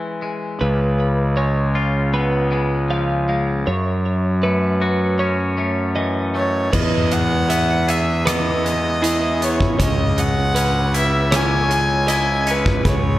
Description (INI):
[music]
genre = post-rock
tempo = 78 BPM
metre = 4/4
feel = straight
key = unclear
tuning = A4 = 440 Hz
[part]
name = twangy electric guitar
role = arpeggios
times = 0.0-13.2 s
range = E2 to G#4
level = -25 LUFS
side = left 3 dB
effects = digital delay
[part]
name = twelve-string electric guitar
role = arpeggios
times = 0.6-13.2 s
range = E4 to E#5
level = -26 LUFS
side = right 2 dB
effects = spring reverb, digital delay
[part]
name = fuzz fingered electric bass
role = bass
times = 0.6-13.2 s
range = C#2 to F#2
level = -19 LUFS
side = equal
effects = overdrive
[part]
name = rich violin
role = melody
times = 6.4-13.2 s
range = B4 to G#5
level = -22 LUFS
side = equal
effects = digital delay
[part]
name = huge arena drum kit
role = drums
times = 6.7-13.0 s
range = crash cymbal, hi-hat, kick drum, rim click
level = -22 LUFS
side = equal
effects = none
[sound]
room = light reverb, studio reverb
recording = dark, warm production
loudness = -16 LUFS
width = side -15 dB against mid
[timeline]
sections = 0.0-6.7 A section; 6.7-13.2 B section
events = none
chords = 0.0 C#m; 0.6 C#7; 3.7 F#m7; 6.7 Emaj7; 9.8 C#m